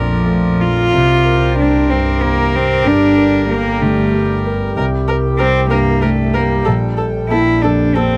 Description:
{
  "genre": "neoclassical piano and strings",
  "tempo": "62 BPM (dotted quarters)",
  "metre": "6/8",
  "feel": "rubato",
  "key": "unclear",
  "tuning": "A4 = 440 Hz",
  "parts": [
    { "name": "rich cello", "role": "second line", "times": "0.0-8.2 s", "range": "F3 to F4", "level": "-18 LUFS", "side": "equal", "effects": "none" },
    { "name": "dark concert grand piano", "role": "accompaniment", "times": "0.0-8.2 s", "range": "Bb1 to Bb4", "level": "-20 LUFS", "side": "equal", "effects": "none" },
    { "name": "warm viola", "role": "accompaniment", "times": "0.0-8.0 s", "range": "A4 to Bb4", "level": "-26 LUFS", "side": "equal", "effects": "none" },
    { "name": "hand-pumped harmonium", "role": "sustained chords", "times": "0.0-8.2 s", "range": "G3 to G5", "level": "-25 LUFS", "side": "equal", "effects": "none" },
    { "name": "dark double bass", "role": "bass", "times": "0.0-8.2 s", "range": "G1 to C2", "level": "-22 LUFS", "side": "equal", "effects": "none" }
  ],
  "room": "little or no reverb",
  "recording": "close, detailed microphones",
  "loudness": "-14 LUFS",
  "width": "mono",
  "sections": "0.0-8.2 A section",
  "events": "none",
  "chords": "0.0 Bbmaj7; 0.9 C7sus4; 2.9 Gm; 4.8 C5; 6.7 Bb5",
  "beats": "| 0.93 1.90 | 2.86 3.82 | 4.77 5.71 | 6.66 7.62"
}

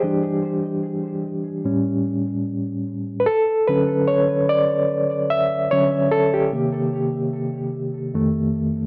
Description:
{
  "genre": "hip hop",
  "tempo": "74 BPM",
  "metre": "4/4",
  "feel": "swing 55% on 16ths",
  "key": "unclear",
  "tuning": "A4 = 440 Hz",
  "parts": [
    { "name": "barky reed electric piano", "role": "solo", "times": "0.0-8.9 s", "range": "F2 to E5", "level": "-21 LUFS", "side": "equal", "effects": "overdrive, fast tremolo, cassette tape, tape echo" }
  ],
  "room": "light reverb",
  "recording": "cassette tape",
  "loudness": "-21 LUFS",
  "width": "mono",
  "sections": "0.0-8.9 A section",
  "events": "reed electric piano solo 0.0-8.9",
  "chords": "0.0 Em7; 1.6 A7; 3.3 Dmaj7; 6.5 Cm7; 8.1 F7",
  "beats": "| 0.02 0.83 1.64 2.45 | 3.26 4.07 4.88 5.70 | 6.51 7.32 8.13"
}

